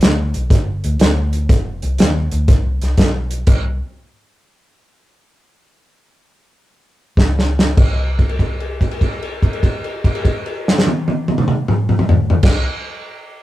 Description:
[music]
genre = electric blues shuffle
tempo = 97-121 BPM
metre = 4/4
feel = swing 67% on 8ths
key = unclear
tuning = A4 = 439 Hz
[part]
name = vintage muted fingered electric bass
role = bass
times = 0.0-3.8, 7.2-12.6 s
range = F1 to Eb2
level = -19 LUFS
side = equal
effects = none
[part]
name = warm soul drum kit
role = drums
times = 0.0-3.6, 7.2-12.6 s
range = crash cymbal, hi-hat, kick drum, snare drum, toms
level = -14 LUFS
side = equal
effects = none
[sound]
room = moderate small room reverb, RT60 0.5 s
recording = rough rehearsal-room recording, tube saturation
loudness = -14 LUFS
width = side -15 dB against mid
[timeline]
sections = 0.0-7.8 A section; 7.8-12.7 B section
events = slowing down 3.5-7.8; stop 3.5-7.2; drum fill 7.2-7.8; held note 7.8-12.3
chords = none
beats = 0.01 0.50 1.00 | 1.49 1.99 2.48 2.98 | 3.47 3.97 4.47 4.98 | 5.50 6.04 6.59 7.17 | 7.78 8.39 9.01 9.63 | 10.24 10.86 11.48 12.10

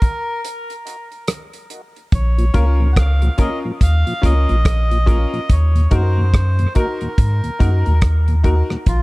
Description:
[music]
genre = dub reggae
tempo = 71 BPM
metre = 4/4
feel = swing 61% on 16ths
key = unclear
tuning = A4 = 440 Hz
[part]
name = melodica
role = melody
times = 0.0-9.0 s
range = F4 to Gb5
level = -26 LUFS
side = equal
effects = dub echo
[part]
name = mellow tonewheel organ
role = accompaniment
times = 0.0-8.8 s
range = Eb2 to Gb4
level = -26 LUFS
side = left 1 dB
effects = overdrive, chorus vibrato, slow rotary speaker, high-pass filter
[part]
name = damped 70s drum kit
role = drums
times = 0.0-9.0 s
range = hi-hat, kick drum, rim click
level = -16 LUFS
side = equal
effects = none
[part]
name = soft dub sub bass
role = bass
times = 2.1-9.0 s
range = Bb1 to Ab2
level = -15 LUFS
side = equal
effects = none
[part]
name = bright upright piano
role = stabs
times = 2.5-8.7 s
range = Db4 to Bb4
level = -26 LUFS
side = left 3 dB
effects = high-pass filter, dub echo
[sound]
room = little or no reverb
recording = echo-heavy mix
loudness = -14 LUFS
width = side -22 dB against mid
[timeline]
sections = 0.0-9.0 A section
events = break 0.0-2.1; filter sweep 0.0-2.1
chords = 0.0 Ebm; 2.1 Bbm; 5.5 Ebm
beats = 0.44 1.28 | 2.12 2.97 3.81 4.65 | 5.50 6.34 7.18 8.02 | 8.87

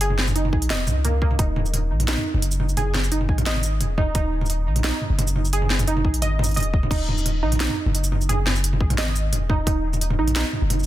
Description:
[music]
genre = half-time drum and bass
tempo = 174 BPM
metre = 4/4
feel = half-time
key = Eb phrygian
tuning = A4 = 440 Hz
[part]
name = warbly dusty pluck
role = arpeggios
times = 0.0-10.9 s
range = Bb3 to Eb5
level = -27 LUFS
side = right 4 dB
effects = chorus, tape echo
[part]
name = long sustained 808-style bass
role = bass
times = 0.0-10.9 s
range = Eb1 to Db2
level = -22 LUFS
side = equal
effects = none
[part]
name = drum and bass drum kit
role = drums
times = 0.0-10.9 s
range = crash cymbal, hi-hat, shaker, snare drum, toms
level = -25 LUFS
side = equal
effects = none
[part]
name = electronic kick drum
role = drums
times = 0.5-9.7 s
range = none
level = -22 LUFS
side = equal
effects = none
[sound]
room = little or no reverb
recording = dense, heavily limited modern master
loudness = -19 LUFS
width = side -14 dB against mid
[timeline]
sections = 0.0-10.9 A section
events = none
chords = 0.0 Ebm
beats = | 0.01 0.36 0.70 1.05 | 1.39 1.74 2.08 2.43 | 2.77 3.12 3.46 3.81 | 4.15 4.49 4.84 5.18 | 5.53 5.87 6.22 6.56 | 6.91 7.25 7.60 7.94 | 8.29 8.63 8.98 9.32 | 9.67 10.01 10.36 10.70

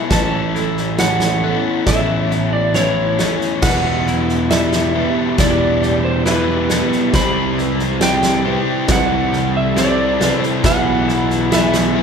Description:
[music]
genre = post-rock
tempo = 68 BPM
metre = 4/4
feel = straight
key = E minor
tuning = A4 = 440 Hz
[part]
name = electric slide guitar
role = melody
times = 0.0-12.0 s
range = B4 to B5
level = -21 LUFS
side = right 1 dB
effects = none
[part]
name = lush unison pad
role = sustained chords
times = 0.0-12.0 s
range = G3 to B4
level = -28 LUFS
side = left 1 dB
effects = none
[part]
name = felt-muted upright piano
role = arpeggios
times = 0.0-12.0 s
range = A4 to E5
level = -30 LUFS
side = right 4 dB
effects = none
[part]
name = twelve-string electric guitar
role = arpeggios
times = 0.0-12.0 s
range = E2 to E4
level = -26 LUFS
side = left 2 dB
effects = spring reverb
[part]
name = crunchy overdriven guitar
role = riff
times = 0.0-12.0 s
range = A2 to G#4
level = -21 LUFS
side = left 6 dB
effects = none
[part]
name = fuzz picked electric bass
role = bass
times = 0.1-12.0 s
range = E1 to C2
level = -23 LUFS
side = right 1 dB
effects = overdrive
[part]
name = big rock drum kit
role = drums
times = 0.1-11.9 s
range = crash cymbal, kick drum, snare drum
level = -20 LUFS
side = equal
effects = none
[part]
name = crunchy overdriven guitar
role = riff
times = 3.6-12.0 s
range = E2 to C4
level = -21 LUFS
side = right 6 dB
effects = none
[sound]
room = wet large studio reverb, RT60 0.9 s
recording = band playing live in one room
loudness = -14 LUFS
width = side -6 dB against mid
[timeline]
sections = 0.0-12.0 A section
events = build-up 0.0-12.0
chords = 0.1 Aadd9; 3.6 Em; 7.1 Cmaj7; 10.6 E/B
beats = | 0.11 0.99 1.87 2.75 | 3.63 4.51 5.38 6.26 | 7.14 8.01 8.89 9.77 | 10.64 11.52

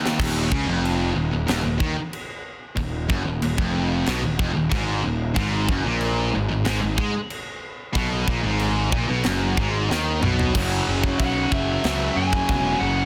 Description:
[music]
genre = heavy metal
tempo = 93 BPM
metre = 4/4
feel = straight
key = unclear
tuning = A4 = 440 Hz
[part]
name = distorted electric guitar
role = riff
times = 0.0-13.1 s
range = Eb2 to Ab3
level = -29 LUFS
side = equal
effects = overdrive
[part]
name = heavy high-gain guitar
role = riff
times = 0.0-13.1 s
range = Eb2 to Ab3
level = -30 LUFS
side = equal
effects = distortion
[part]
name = tight distorted guitar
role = riff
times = 0.0-0.2, 5.4-13.1 s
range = Eb2 to Ab3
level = -33 LUFS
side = equal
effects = none
[part]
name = tight metal drum kit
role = drums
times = 0.1-12.6 s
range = china cymbal, crash cymbal, kick drum, snare drum, toms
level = -29 LUFS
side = equal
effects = none
[part]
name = fuzz picked electric bass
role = bass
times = 0.2-13.1 s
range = Eb1 to Ab2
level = -28 LUFS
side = equal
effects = overdrive
[part]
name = bluesy overdriven lead guitar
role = melody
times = 11.2-13.1 s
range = Fb5 to Ab5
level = -28 LUFS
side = equal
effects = distortion
[sound]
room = studio reverb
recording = dense, heavily limited modern master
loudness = -23 LUFS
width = mono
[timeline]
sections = 0.2-10.5 A section; 10.5-13.1 B section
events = break 0.0; drum fill 0.0, 9.9-10.5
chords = 0.2 N.C.; 5.4 Ab5; 10.5 Gb5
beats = | 0.19 0.84 1.48 2.13 | 2.78 3.42 4.07 4.72 | 5.37 6.01 6.66 7.31 | 7.96 8.60 9.25 9.90 | 10.55 11.20 11.85 12.49

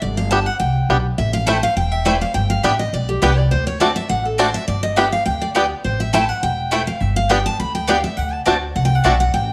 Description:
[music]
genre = bluegrass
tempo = 206 BPM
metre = 4/4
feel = straight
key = unclear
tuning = A4 = 439 Hz
[part]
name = picked steel-string acoustic guitar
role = accompaniment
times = 0.0-9.5 s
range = G4 to B5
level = -24 LUFS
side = equal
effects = none
[part]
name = upright bass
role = bass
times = 0.0-9.5 s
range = E1 to D2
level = -23 LUFS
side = equal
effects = none
[part]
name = bluegrass banjo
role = melody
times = 0.3-9.1 s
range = A3 to G4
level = -22 LUFS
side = equal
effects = slapback echo
[part]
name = mandolin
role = stabs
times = 1.5-9.1 s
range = A3 to A5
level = -25 LUFS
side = equal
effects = slapback echo
[sound]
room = moderate echo chamber reverb, RT60 1.4 s, small room ambience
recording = none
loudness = -18 LUFS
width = mono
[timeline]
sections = 0.0-9.5 A section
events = steel-string acoustic guitar solo 0.0-9.5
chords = 0.0 G; 1.2 Am7; 2.3 G; 3.5 D7; 4.7 G; 5.8 Am7; 7.0 G; 8.2 D7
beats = | 0.02 0.31 0.60 0.89 | 1.18 1.48 1.77 2.06 | 2.35 2.64 2.93 3.22 | 3.51 3.81 4.10 4.39 | 4.68 4.97 5.26 5.55 | 5.84 6.14 6.43 6.72 | 7.01 7.30 7.59 7.88 | 8.18 8.47 8.76 9.05 | 9.34

